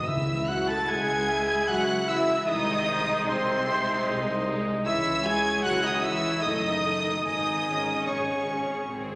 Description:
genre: classical.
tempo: 75 BPM.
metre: 3/4.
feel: uneven beats, rubato.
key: C# minor.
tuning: A4 = 440 Hz.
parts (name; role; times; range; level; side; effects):
clear chamber violin section; melody; 0.0-8.9 s; B#5 to A6; -32 LUFS; equal; none.
hollow silver concert flute; second line; 0.0-8.9 s; B#4 to A5; -38 LUFS; equal; none.
rich chamber violin section; second line; 0.0-8.9 s; B#4 to A5; -38 LUFS; equal; none.
warm oboe; second line; 0.0-8.9 s; B#4 to A5; -36 LUFS; equal; none.
rich studio viola section; accompaniment; 0.0-9.2 s; G#3 to A4; -36 LUFS; equal; none.
warm French horn section; sustained chords; 0.0-8.9 s; B#3 to A4; -33 LUFS; equal; none.
rich symphonic cello section; bass; 0.0-8.9 s; B#2 to A3; -40 LUFS; equal; none.
timpani; percussion; 0.0-1.2 s; C#3; -36 LUFS; equal; none.
clear chamber double bass section; bass; 0.1-9.2 s; F#1 to C#2; -41 LUFS; equal; none.
mellow tuba; bass; 0.1-9.2 s; F#1 to C#2; -41 LUFS; equal; none.
bright clarinet; second line; 0.9-9.2 s; B#4 to G#5; -36 LUFS; equal; none.
room: wet concert hall reverb, RT60 1.8 s.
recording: none.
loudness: -26 LUFS.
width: mono.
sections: 0.1-9.2 A section.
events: none.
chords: 0.1 C#m; 2.5 G#/B#; 4.9 C#m; 6.4 D#dim/F#; 7.2 C#5/G#.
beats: | 0.07 0.89 1.69 | 2.49 3.28 4.07 | 4.86 5.63 6.42 | 7.24 8.07 8.90.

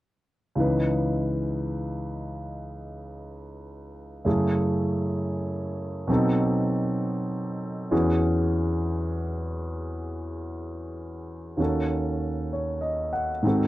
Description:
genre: jazz.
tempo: 65 BPM.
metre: 4/4.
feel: swing 68% on 8ths.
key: C# minor.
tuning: A4 = 441 Hz.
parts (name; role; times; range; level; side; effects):
warm grand piano; accompaniment; 0.6-13.7 s; C#2 to F#5; -25 LUFS; equal; none.
room: light reverb.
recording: dry, close 1970s-style studio recording.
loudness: -24 LUFS.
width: side -16 dB against mid.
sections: 0.6-13.7 A section.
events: none.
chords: 0.6 C#m9; 4.3 F#m7; 6.1 B7b9; 7.9 E69; 11.6 D#m7b5.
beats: | 0.56 1.49 2.42 3.34 | 4.25 5.17 6.09 7.01 | 7.92 8.83 9.75 10.67 | 11.59 12.52 13.44.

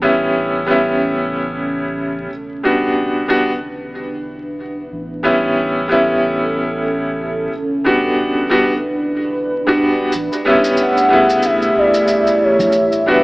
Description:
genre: trip hop.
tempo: 92 BPM.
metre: 4/4.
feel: swing 59% on 16ths.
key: unclear.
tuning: A4 = 443 Hz.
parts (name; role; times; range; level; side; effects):
bright upright piano; accompaniment; 0.0-13.2 s; C#3 to F#4; -15 LUFS; equal; tremolo, tape echo.
deep dark ambient pad; sustained chords; 0.0-13.2 s; A3 to A5; -21 LUFS; equal; chorus, built-in reverb.
soft dub sub bass; bass; 0.0-12.9 s; E1 to C#2; -34 LUFS; equal; none.
maracas and congas; percussion; 10.1-13.0 s; none; -27 LUFS; equal; none.
pure breathy sine lead; melody; 10.8-13.2 s; B4 to F#5; -14 LUFS; equal; wide subtle chorus.
room: light reverb, studio reverb.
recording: vinyl crackle, AM radio sound.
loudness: -13 LUFS.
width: side -25 dB against mid.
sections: 0.0-10.1 A section; 10.1-13.2 B section.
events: filter sweep on ambient pad 0.0-10.1.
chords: 0.0 A7; 2.3 Em7; 4.9 A7; 7.5 Em7; 10.1 A7; 12.7 Em7.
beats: 0.34 0.99 1.64 | 2.30 2.95 3.60 4.25 | 4.91 5.56 6.21 6.86 | 7.51 8.16 8.82 9.47 | 10.12 10.77 11.43 12.08 | 12.73.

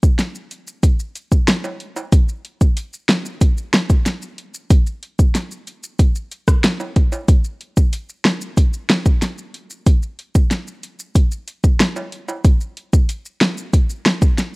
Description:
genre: dancehall.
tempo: 93 BPM.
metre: 4/4.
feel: straight.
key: none.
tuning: none.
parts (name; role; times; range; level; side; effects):
deep house drum kit; drums; 0.0-14.5 s; hi-hat, kick drum, rim click, snare drum; -14 LUFS; equal; none.
maracas and timbales; percussion; 0.0-14.5 s; none; -32 LUFS; right 1 dB; none.
room: digital ambience.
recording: rough home demo mix.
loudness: -15 LUFS.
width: side -28 dB against mid.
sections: 0.0-14.6 A section.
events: none.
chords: none.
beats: 0.19 0.83 1.48 | 2.12 2.77 3.41 4.06 | 4.70 5.35 5.99 6.64 | 7.28 7.93 8.57 9.22 | 9.87 10.51 11.15 11.80 | 12.45 13.09 13.74 14.38.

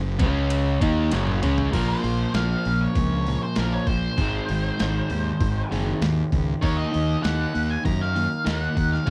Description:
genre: classic rock.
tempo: 98 BPM.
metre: 4/4.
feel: straight.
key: Bb minor.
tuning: A4 = 441 Hz.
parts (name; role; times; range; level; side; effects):
crunchy overdriven guitar; riff; 0.0-9.1 s; Gb2 to Eb4; -31 LUFS; equal; none.
overdriven semi-hollow guitar; riff; 0.0-9.1 s; Gb2 to Eb4; -30 LUFS; equal; none.
fuzz fingered electric bass; bass; 0.0-9.1 s; Gb1 to Gb2; -28 LUFS; equal; overdrive.
boom bap sampler-style drum kit; drums; 0.2-9.1 s; crash cymbal, hi-hat, kick drum, ride cymbal, snare drum, toms; -29 LUFS; equal; overdrive.
octave-fuzz lead guitar; melody; 1.7-9.1 s; Bb4 to Bb5; -32 LUFS; equal; distortion.
room: little or no reverb.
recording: dry, close 1970s-style studio recording.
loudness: -23 LUFS.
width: mono.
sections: 0.0-1.7 A section; 1.7-9.1 B section.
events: drum fill 1.1-1.7.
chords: 0.2 Db5; 0.8 Gb5; 1.7 Bbm; 4.2 Ab; 6.6 Ebm.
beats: 0.51 1.12 | 1.73 2.35 2.96 3.57 | 4.18 4.79 5.41 6.02 | 6.63 7.24 7.85 8.46 | 9.07.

